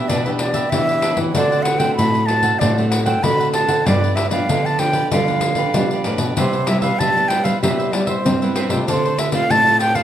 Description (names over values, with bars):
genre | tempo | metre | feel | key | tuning
samba and choro | 96 BPM | 4/4 | straight | C major | A4 = 440 Hz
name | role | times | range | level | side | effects
breathy concert flute | melody | 0.0-10.0 s | B4 to B5 | -19 LUFS | right 1 dB | plate reverb
cavaquinho | accompaniment | 0.0-10.0 s | D4 to F#5 | -28 LUFS | right 5 dB | none
nylon-string guitar | accompaniment | 0.0-10.0 s | G2 to G4 | -24 LUFS | left 2 dB | none
nylon-string guitar | bass | 0.1-10.0 s | G2 to C4 | -21 LUFS | right 1 dB | none
pandeiro | percussion | 0.1-10.0 s | none | -22 LUFS | left 3 dB | none
room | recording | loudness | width
moderate large studio reverb, RT60 1.0 s | lossy compression artefacts | -15 LUFS | side -10 dB against mid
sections
0.0-10.0 A section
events
none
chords
0.0 Em7; 1.4 D7; 3.9 G7; 6.4 Cmaj7; 8.9 Dm7